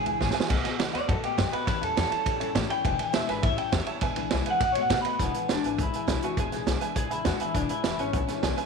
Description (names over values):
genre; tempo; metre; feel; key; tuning
rockabilly; 204 BPM; 4/4; straight; E mixolydian; A4 = 440 Hz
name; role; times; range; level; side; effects
electric guitar through a small old amp; melody; 0.0-8.7 s; B3 to B5; -29 LUFS; left 1 dB; lush chorus, tape echo
honky-tonk upright piano; accompaniment; 0.0-8.7 s; B4 to B5; -35 LUFS; right 10 dB; none
picked steel-string acoustic guitar; accompaniment; 0.0-8.7 s; E2 to F#4; -34 LUFS; left 16 dB; none
upright bass; bass; 0.1-8.6 s; E1 to B2; -32 LUFS; left 2 dB; none
vintage drum kit; drums; 0.1-8.6 s; crash cymbal, hi-hat, kick drum, ride cymbal, snare drum; -29 LUFS; right 4 dB; none
room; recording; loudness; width
light reverb, small room ambience; 1960s-style stereo with parts hard left and right; -24 LUFS; side -5 dB against mid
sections
0.0-5.2 A section; 5.2-8.7 B section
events
clean electric guitar solo 0.0-5.2; drum fill 0.2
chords
0.0 E7; 0.5 B7; 1.7 A7; 2.9 E7; 3.4 A7; 4.0 E7; 4.6 B7; 5.2 E7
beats
0.21 | 0.50 0.80 1.09 1.38 | 1.68 1.97 2.26 2.56 | 2.85 3.14 3.44 3.73 | 4.02 4.32 4.61 4.90 | 5.20 5.49 5.79 6.08 | 6.37 6.67 6.96 7.26 | 7.55 7.85 8.14 8.44